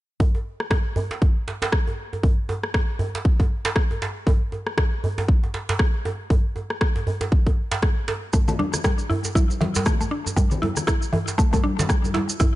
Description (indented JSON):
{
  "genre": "afro house",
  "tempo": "118 BPM",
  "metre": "4/4",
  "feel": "swing 58% on 16ths",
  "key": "unclear",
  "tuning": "A4 = 440 Hz",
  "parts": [
    { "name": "electronic kick drum", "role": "drums", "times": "0.2-12.5 s", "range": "none", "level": "-20 LUFS", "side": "equal", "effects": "small room ambience" },
    { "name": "djembe", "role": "percussion", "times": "0.2-12.5 s", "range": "none", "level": "-28 LUFS", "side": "right 2 dB", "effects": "none" },
    { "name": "electronic rim click", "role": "drums", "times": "0.6-12.0 s", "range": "none", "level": "-28 LUFS", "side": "left 1 dB", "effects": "small room ambience" },
    { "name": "mallet-like synth pluck", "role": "arpeggios", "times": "8.3-12.5 s", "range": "E3 to E4", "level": "-26 LUFS", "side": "equal", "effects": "chorus, sidechain pumping, ping-pong delay" },
    { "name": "maracas", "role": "percussion", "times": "8.3-12.5 s", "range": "none", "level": "-31 LUFS", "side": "right 4 dB", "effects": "none" },
    { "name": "congas", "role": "percussion", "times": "8.5-12.4 s", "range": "none", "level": "-28 LUFS", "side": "left 2 dB", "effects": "none" }
  ],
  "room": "small room ambience",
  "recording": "nothing above 10.8 kHz",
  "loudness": "-20 LUFS",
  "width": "side -17 dB against mid",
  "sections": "0.2-12.6 A section",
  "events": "none",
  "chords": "none"
}